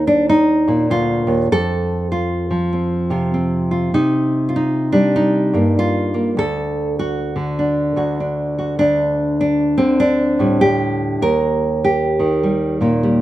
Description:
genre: folk, solo fingerstyle acoustic guitar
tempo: 99 BPM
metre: 4/4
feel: swing 62% on 8ths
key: unclear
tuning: A4 = 440 Hz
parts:
  - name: nylon-string guitar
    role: solo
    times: 0.0-13.2 s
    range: D2 to Bb4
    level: -15 LUFS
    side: equal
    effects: none
room: light reverb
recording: recorded outdoors, with no room sound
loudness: -15 LUFS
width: side -14 dB against mid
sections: 0.0-13.2 A section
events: none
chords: 0.0 Ebadd9; 1.5 F; 3.9 Cm7; 6.4 D; 8.8 Dsus4; 11.2 Eb

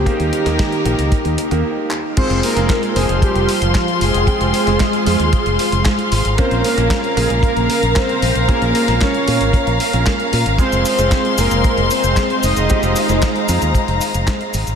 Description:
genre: italo disco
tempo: 114 BPM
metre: 4/4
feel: straight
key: F minor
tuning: A4 = 440 Hz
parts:
  - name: analog synth brass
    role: melody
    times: 0.0-13.5 s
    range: F3 to Eb5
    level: -20 LUFS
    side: equal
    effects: chorus, cassette tape, diffuse ambient delay
  - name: dark chamber string section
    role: sustained chords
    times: 0.0-14.8 s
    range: Eb3 to C6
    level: -20 LUFS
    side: left 2 dB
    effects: none
  - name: warm concert grand piano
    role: stabs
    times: 0.0-14.8 s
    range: Db3 to G5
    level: -22 LUFS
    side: right 4 dB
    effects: ping-pong delay
  - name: fingered electric bass with an envelope filter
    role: bass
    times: 0.0-14.8 s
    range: F1 to Bb2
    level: -19 LUFS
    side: equal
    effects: tube saturation
  - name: clean 12-bit digital drum machine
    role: drums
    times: 0.1-14.8 s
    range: cabasa, crash cymbal, handclaps, hi-hat, snare drum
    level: -24 LUFS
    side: left 1 dB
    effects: none
  - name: kick drum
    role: drums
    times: 0.1-14.4 s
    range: none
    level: -17 LUFS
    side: equal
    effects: none
room: moderate huge ambient reverb, RT60 8.5 s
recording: dreamy mix soaked in reverb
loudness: -14 LUFS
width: side -7 dB against mid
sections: 0.0-2.2 A section; 2.2-14.8 B section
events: break 1.6-2.2; drum fill 1.9; fade-out 13.4-14.8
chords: 0.1 Eb; 2.2 Fm; 6.4 Bbm; 10.6 Fm

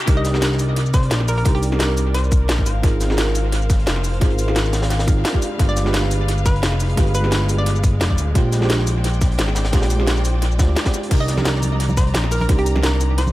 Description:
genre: liquid drum and bass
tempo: 174 BPM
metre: 4/4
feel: swing 54% on 16ths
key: C minor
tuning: A4 = 440 Hz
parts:
  - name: rich symphonic string section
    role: sustained chords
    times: 0.0-13.3 s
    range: Ab3 to Bb5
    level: -30 LUFS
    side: left 1 dB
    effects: vintage 12-bit sampler grit
  - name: garage drum kit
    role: drums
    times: 0.0-13.3 s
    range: crash cymbal, handclaps, hi-hat, shaker, snare drum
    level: -25 LUFS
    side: equal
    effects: high-pass filter on hats, high-pass filter on perc, high-pass filter on snare, high-pass filter on cymbals, high-pass filter on room, tape echo
  - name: deep mellow chord stab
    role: accompaniment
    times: 0.1-13.3 s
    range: Ab3 to D5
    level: -25 LUFS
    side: right 2 dB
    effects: chorus, analog delay
  - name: smooth synth bass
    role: bass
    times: 0.1-13.3 s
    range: D1 to D2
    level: -19 LUFS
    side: equal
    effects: none
  - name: crunchy breakbeat drum kit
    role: drums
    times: 0.1-13.3 s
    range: hi-hat, snare drum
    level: -30 LUFS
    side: equal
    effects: high-pass filter on hats, high-pass filter on snare, high-pass filter on room, tape echo
  - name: electronic kick drum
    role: drums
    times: 0.1-12.6 s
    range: none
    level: -17 LUFS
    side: equal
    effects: high-pass filter on kick, high-pass filter on room
  - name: hollow square pluck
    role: melody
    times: 0.2-2.4, 5.7-8.1, 11.2-13.3 s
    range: G4 to Eb5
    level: -28 LUFS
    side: equal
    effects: chorus, tape echo
  - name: bongos and congas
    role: percussion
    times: 11.3-13.3 s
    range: none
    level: -28 LUFS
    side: right 1 dB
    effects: none
room: light reverb, small room ambience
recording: echo-heavy mix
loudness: -16 LUFS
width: side -16 dB against mid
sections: 0.1-13.3 A section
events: drop 0.1-13.3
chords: 0.1 Cm9; 2.7 Ab69; 5.4 G7b9; 8.4 Bb13; 11.1 Cm9

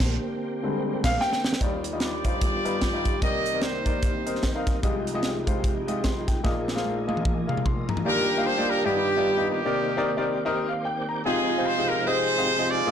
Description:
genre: uptempo gospel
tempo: 149 BPM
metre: 4/4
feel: swing 58% on 8ths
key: Eb major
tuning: A4 = 440 Hz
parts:
  - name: dark French horn section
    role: sustained chords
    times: 0.0-8.0 s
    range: C3 to Ab4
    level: -36 LUFS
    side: equal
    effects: none
  - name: tonewheel organ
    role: sustained chords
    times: 0.0-12.9 s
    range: C3 to G5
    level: -33 LUFS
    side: right 2 dB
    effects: slow rotary speaker, chorus vibrato
  - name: hollow-body short-scale fingered electric bass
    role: bass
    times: 0.0-1.2 s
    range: Bb1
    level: -29 LUFS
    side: equal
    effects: tube saturation
  - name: crisp fusion drum kit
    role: drums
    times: 0.0-8.0 s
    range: crash cymbal, hi-hat, kick drum, snare drum, toms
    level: -26 LUFS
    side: equal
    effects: soft clipping on snare
  - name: warm grand piano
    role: accompaniment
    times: 0.6-12.9 s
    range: G1 to C6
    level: -28 LUFS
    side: left 2 dB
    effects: none
  - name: warm horn section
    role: melody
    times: 2.0-4.7, 8.1-12.9 s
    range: Bb3 to Eb5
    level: -24 LUFS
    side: right 1 dB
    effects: none
room: light reverb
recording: blown-out, overdriven recording, overdrive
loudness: -23 LUFS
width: side -8 dB against mid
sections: 0.0-1.6 A section; 1.6-8.1 B section; 8.1-12.9 C section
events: grand piano solo 0.0-1.6; band accent 0.0-1.6; drum fill 1.2-1.6, 6.4-8.1; tonewheel organ fill 10.5-11.3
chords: 0.0 Bb13; 1.6 Ebmaj9; 2.4 G7b13; 3.2 Cm9; 4.8 Fm9/C; 6.4 Bb7sus4; 8.1 Ebmaj9; 8.9 G7b13; 9.7 Cm9; 11.3 Fm9/C

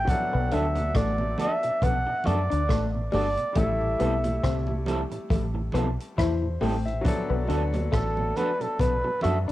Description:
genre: lovers rock reggae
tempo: 69 BPM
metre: 4/4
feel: swing 57% on 16ths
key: unclear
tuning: A4 = 441 Hz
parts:
  - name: mellow flugelhorn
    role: melody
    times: 0.0-9.4 s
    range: A4 to G5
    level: -28 LUFS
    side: right 1 dB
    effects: cassette tape, tape echo
  - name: clear baby grand piano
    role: accompaniment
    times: 0.0-9.5 s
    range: F#3 to G5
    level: -34 LUFS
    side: left 3 dB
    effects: cassette tape, analog delay
  - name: deep dub fingered electric bass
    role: bass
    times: 0.0-9.5 s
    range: G1 to F#2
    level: -27 LUFS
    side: equal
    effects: none
  - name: vintage drum kit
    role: drums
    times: 0.1-9.5 s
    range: hi-hat, kick drum, rim click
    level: -29 LUFS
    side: equal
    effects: cassette tape
  - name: congas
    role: percussion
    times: 0.1-9.4 s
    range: none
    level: -37 LUFS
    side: right 2 dB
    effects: analog delay
  - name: mellow tonewheel organ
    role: accompaniment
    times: 0.3-9.3 s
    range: A2 to D4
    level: -37 LUFS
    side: right 4 dB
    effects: slow rotary speaker, cassette tape
  - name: electric guitar through a small old amp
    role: riff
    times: 0.3-9.5 s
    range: G3 to F#4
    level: -31 LUFS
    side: left 5 dB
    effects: cassette tape
  - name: electric guitar through a small old amp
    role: stabs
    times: 0.5-9.4 s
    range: G3 to A4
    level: -34 LUFS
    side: right 2 dB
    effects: cassette tape, analog delay
room: light reverb, studio reverb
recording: home recording on cassette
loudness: -23 LUFS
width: side -15 dB against mid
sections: 0.0-9.5 A section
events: none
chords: 0.1 Bm7; 3.6 Am7; 7.0 Bm7

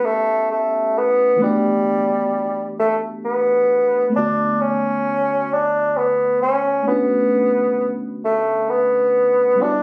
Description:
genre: R&B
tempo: 44 BPM (dotted quarters)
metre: 6/8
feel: straight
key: unclear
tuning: A4 = 440 Hz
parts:
  - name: mellow bassoon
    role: melody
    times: 0.0-9.8 s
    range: G3 to D4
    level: -19 LUFS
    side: equal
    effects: slapback echo, plate reverb
  - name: mellow FM electric piano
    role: accompaniment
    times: 0.0-9.8 s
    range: D3 to C#5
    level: -27 LUFS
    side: equal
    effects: chorus, phaser, plate reverb
room: moderate studio reverb, RT60 0.6 s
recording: recorded on a phone in the room, studio reverb, compression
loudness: -19 LUFS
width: mono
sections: 0.0-4.1 A section; 4.1-9.8 B section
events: none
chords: 0.0 A9; 1.4 Em11; 4.1 Bm7

